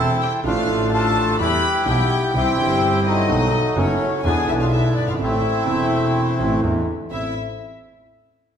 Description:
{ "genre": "tango", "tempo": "126 BPM", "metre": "4/4", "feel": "rubato", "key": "A minor", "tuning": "A4 = 440 Hz", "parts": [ { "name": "bandoneon", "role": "melody", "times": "0.0-7.3 s", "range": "F#3 to B4", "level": "-22 LUFS", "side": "left 1 dB", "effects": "none" }, { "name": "warm studio violin section", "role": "second line", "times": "0.0-7.3 s", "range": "C#5 to B5", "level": "-25 LUFS", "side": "left 3 dB", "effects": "none" }, { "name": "warm concert grand piano", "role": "accompaniment", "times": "0.0-7.3 s", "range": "E1 to G4", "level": "-23 LUFS", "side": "right 2 dB", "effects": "none" }, { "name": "clear double bass", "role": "bass", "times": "0.0-7.3 s", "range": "E1 to E2", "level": "-23 LUFS", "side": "equal", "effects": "none" } ], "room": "wet recital hall reverb, RT60 1.5 s", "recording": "recorded in a church or concert hall", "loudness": "-17 LUFS", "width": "side -8 dB against mid", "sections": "0.0-7.1 A section; 7.1-8.6 B section", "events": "none", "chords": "0.4 Dm/A; 1.4 Em; 2.3 C; 3.3 B7; 4.2 E7; 5.2 Am; 6.6 E7; 7.1 Am" }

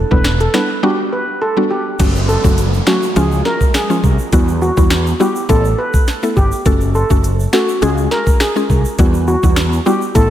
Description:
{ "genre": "dancehall", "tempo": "103 BPM", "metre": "4/4", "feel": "straight", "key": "F# phrygian", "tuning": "A4 = 440 Hz", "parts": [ { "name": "mallet-like synth pluck", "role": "accompaniment", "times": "0.0-10.3 s", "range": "E#3 to A4", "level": "-18 LUFS", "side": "left 1 dB", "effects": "chorus, sidechain pumping" }, { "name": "fretless electric bass", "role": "bass", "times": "0.0-10.3 s", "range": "E1 to E2", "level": "-16 LUFS", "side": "equal", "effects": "ensemble chorus" }, { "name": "steel pan", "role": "melody", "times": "0.1-10.3 s", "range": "F#4 to B4", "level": "-19 LUFS", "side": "right 1 dB", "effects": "diffuse ambient delay" }, { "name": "afro-pop drum kit", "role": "drums", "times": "0.1-10.3 s", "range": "crash cymbal, finger snaps, hi-hat, kick drum, snare drum", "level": "-16 LUFS", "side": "equal", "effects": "none" }, { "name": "tube shaker", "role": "percussion", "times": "2.0-10.3 s", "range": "none", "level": "-33 LUFS", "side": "right 7 dB", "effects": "none" }, { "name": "downlifter", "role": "sound effects", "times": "2.0-6.7 s", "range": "none", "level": "-27 LUFS", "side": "right 1 dB", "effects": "none" } ], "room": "moderate lush hall reverb, RT60 2.2 s", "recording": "dreamy mix soaked in reverb", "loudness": "-12 LUFS", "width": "side -12 dB against mid", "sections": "0.0-2.0 A section; 2.0-10.3 B section", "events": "break 0.8-2.0", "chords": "0.0 Em7; 0.8 Gmaj7; 2.0 F#m; 3.2 C#; 4.3 Emadd9; 5.5 Asus2; 6.7 F#m; 7.8 C#; 9.0 Emadd9" }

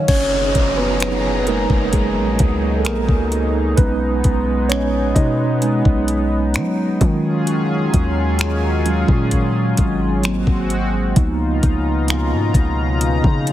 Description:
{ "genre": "contemporary R&B", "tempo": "65 BPM", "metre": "4/4", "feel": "straight", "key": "unclear", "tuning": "A4 = 442 Hz", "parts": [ { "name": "mellow tine electric piano", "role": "accompaniment", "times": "0.0-13.5 s", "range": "F3 to Ab5", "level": "-20 LUFS", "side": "right 2 dB", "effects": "fast stereo tremolo" }, { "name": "chorused pulse-width pad", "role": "sustained chords", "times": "0.0-13.5 s", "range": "Cb3 to Bb5", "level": "-23 LUFS", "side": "left 1 dB", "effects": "none" }, { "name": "warm 808-style bass", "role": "bass", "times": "0.0-13.5 s", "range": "Gb1 to F#3", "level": "-21 LUFS", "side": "left 1 dB", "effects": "none" }, { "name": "smooth R&B drum kit", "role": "drums", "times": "0.1-13.5 s", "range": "crash cymbal, finger snaps, hi-hat, kick drum", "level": "-18 LUFS", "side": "left 1 dB", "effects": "none" }, { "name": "downlifter", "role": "sound effects", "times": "0.1-7.5 s", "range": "none", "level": "-28 LUFS", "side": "equal", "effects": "none" } ], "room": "digital ambience", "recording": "heavily compressed radio sound, multiband compression", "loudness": "-15 LUFS", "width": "side -13 dB against mid", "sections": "0.1-13.5 A section", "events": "tine electric piano solo 0.1-13.5", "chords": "0.1 Gb69; 3.8 B6; 7.0 Ebm11; 10.2 Ab9; 11.2 Db13" }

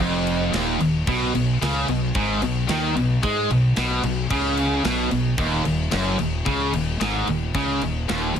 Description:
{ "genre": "heavy metal", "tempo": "111 BPM", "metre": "4/4", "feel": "straight", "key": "unclear", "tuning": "A4 = 441 Hz", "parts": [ { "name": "distorted electric guitar", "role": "riff", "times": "0.0-8.4 s", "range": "Eb2 to Ab3", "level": "-25 LUFS", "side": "right 8 dB", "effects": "overdrive" }, { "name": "distorted electric guitar", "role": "riff", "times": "0.0-8.4 s", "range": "Eb2 to Ab3", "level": "-27 LUFS", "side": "equal", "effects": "distortion" }, { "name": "tight distorted guitar", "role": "riff", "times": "0.0-8.4 s", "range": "Eb2 to Ab3", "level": "-25 LUFS", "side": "left 9 dB", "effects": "distortion" }, { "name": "fuzz fingered electric bass", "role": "bass", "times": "0.0-8.4 s", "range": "Eb1 to Ab2", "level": "-27 LUFS", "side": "equal", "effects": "overdrive" }, { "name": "tight metal drum kit", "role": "drums", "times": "0.3-8.4 s", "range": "crash cymbal, kick drum, snare drum", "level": "-29 LUFS", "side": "left 1 dB", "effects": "soft clipping on kick" } ], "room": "little or no reverb", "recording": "dense, heavily limited modern master, lossy compression artefacts", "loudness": "-20 LUFS", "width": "side -8 dB against mid", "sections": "0.0-8.4 A section", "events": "none", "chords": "0.0 N.C.; 1.1 Abmadd11; 5.4 Ebm" }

